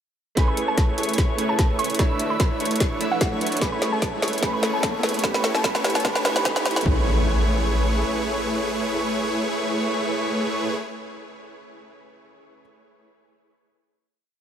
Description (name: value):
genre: future bass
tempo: 148 BPM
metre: 4/4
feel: swing 53% on 16ths, half-time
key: A major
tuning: A4 = 440 Hz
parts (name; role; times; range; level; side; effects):
- glassy wavetable pluck; melody; 0.4-6.8 s; F#5 to C#6; -30 LUFS; right 1 dB; chorus, sidechain pumping, tape echo
- clear concert grand piano; accompaniment; 0.4-12.6 s; A3 to G#5; -32 LUFS; right 5 dB; sidechain pumping, dub echo
- airy dreamy lead; arpeggios; 0.4-10.7 s; C#6 to E6; -34 LUFS; equal; chorus, sidechain pumping
- concert harp; arpeggios; 0.4-9.1 s; F#4 to C#5; -38 LUFS; right 3 dB; none
- supersaw chords; riff; 0.4-10.7 s; A3 to E5; -26 LUFS; equal; sidechain pumping, low-pass filter
- warm 808-style bass; bass; 0.4-8.0 s; A1 to A2; -24 LUFS; equal; sidechain pumping, high-pass filter
- electronic kick drum; drums; 0.4-6.9 s; none; -23 LUFS; equal; studio reverb
- trap drum kit; drums; 0.4-6.9 s; hi-hat, snare drum; -26 LUFS; equal; studio reverb
- riser and impact; sound effects; 1.4-10.8 s; none; -33 LUFS; left 1 dB; none
room: light reverb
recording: high-pass filter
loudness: -20 LUFS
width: side -9 dB against mid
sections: 0.4-6.9 build; 6.9-10.1 final chord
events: build-up 0.4-6.9; drum fill 0.4-6.9; filter sweep on supersaw synth 0.4-6.9; filter sweep 0.4-6.9; riser 1.4-6.9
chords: 0.4 Amaj9; 2.0 Bm11; 3.6 Amaj9; 5.2 Gadd9; 6.9 Amaj9